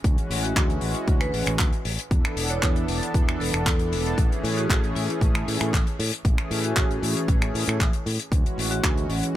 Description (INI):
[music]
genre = nu-disco, nu disco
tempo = 116 BPM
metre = 4/4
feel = straight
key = A major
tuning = A4 = 441 Hz
[part]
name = warm analog pad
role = accompaniment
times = 0.0-9.4 s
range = E3 to A4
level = -29 LUFS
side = equal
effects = analog chorus
[part]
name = modern bright fingered electric bass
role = bass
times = 0.0-9.2 s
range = E1 to A2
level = -28 LUFS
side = equal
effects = none
[part]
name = damped 70s drum kit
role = drums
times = 0.0-9.3 s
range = finger snaps, handclaps, hi-hat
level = -28 LUFS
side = left 2 dB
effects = none
[part]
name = electronic kick drum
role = drums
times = 0.0-8.9 s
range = none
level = -22 LUFS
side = equal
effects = none
[part]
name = vibraphone with medium hard mallets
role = melody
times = 0.4-8.8 s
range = E4 to C#5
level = -34 LUFS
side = equal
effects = ping-pong delay
[sound]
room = little or no reverb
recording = none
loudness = -21 LUFS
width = side -13 dB against mid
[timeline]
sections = 0.0-9.4 A section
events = none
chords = 0.0 Dmaj9#11; 2.1 E7sus4; 4.2 Amaj7; 8.3 Dmaj9#11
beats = | 0.04 0.56 1.08 1.59 | 2.11 2.63 3.15 3.66 | 4.18 4.70 5.21 5.73 | 6.25 6.77 7.28 7.80 | 8.32 8.84 9.35